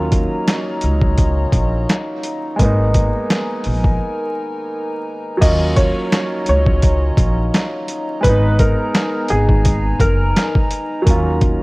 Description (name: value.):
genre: hip hop, boom-bap hip-hop.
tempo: 85 BPM.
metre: 4/4.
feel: swing 57% on 16ths.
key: Eb minor.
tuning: A4 = 439 Hz.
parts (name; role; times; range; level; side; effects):
warm grand piano; accompaniment; 0.0-11.6 s; Gb3 to F4; -23 LUFS; right 1 dB; cassette tape, high-pass filter, low-pass filter.
dark analog pad; sustained chords; 0.0-11.6 s; Cb4 to Bb5; -25 LUFS; equal; chorus, high-pass filter, low-pass filter.
upright bass; bass; 0.0-11.5 s; Gb1 to Eb2; -18 LUFS; equal; none.
boom bap sampler-style drum kit; drums; 0.1-11.6 s; crash cymbal, hi-hat, kick drum, snare drum; -16 LUFS; equal; overdrive, vintage 12-bit sampler grit.
warm upright piano; melody; 5.4-10.5 s; Ab4 to Eb5; -21 LUFS; equal; high-pass filter, low-pass filter, tape echo.
room: light reverb, small room ambience.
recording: worn, warbling old tape, cassette tape, vinyl crackle, warbly pitch drift.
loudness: -14 LUFS.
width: side -23 dB against mid.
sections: 0.0-5.4 A section; 5.4-11.6 B section.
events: break 4.0-5.4.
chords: 0.0 Ebm7; 2.6 Abmadd9; 5.4 Ebm7; 8.2 Abmadd9; 11.1 Ebm7.